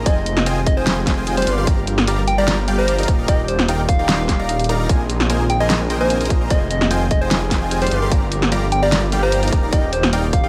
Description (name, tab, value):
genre	future bass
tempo	149 BPM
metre	4/4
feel	half-time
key	Eb major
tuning	A4 = 440 Hz
part	airy breathy pad	sustained chords	0.0-10.5 s	D3 to D5	-34 LUFS	equal	none
part	Celtic harp	arpeggios	0.0-10.5 s	C4 to D5	-32 LUFS	equal	sidechain pumping, delay
part	airy dreamy lead	arpeggios	0.0-10.5 s	G5 to C6	-35 LUFS	equal	none
part	dense compressed supersaw	riff	0.0-10.5 s	G3 to C6	-27 LUFS	equal	sidechain pumping
part	detuned saw bass	bass	0.0-10.5 s	Eb1 to Bb1	-23 LUFS	equal	chorus, sidechain pumping
part	soft struck synth lead	melody	0.1-10.5 s	C5 to G5	-25 LUFS	equal	chorus, sidechain pumping, delay
part	electronic kick drum	drums	0.1-10.4 s	none	-20 LUFS	equal	none
part	pop drum kit	drums	0.1-10.4 s	hi-hat, snare drum	-24 LUFS	equal	none
room	digital ambience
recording	none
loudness	-18 LUFS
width	mono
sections	0.0-10.5 A section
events	none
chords	0.1 Fm7; 1.5 Gm7; 3.1 Ebmaj9; 4.9 Bb9sus4; 6.5 Fm7; 7.9 Gm7; 9.5 Ebmaj9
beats	| 0.06 0.47 0.87 1.27 | 1.67 2.08 2.48 2.88 | 3.28 3.69 4.09 4.49 | 4.89 5.30 5.70 6.10 | 6.50 6.91 7.31 7.71 | 8.12 8.52 8.92 9.32 | 9.73 10.13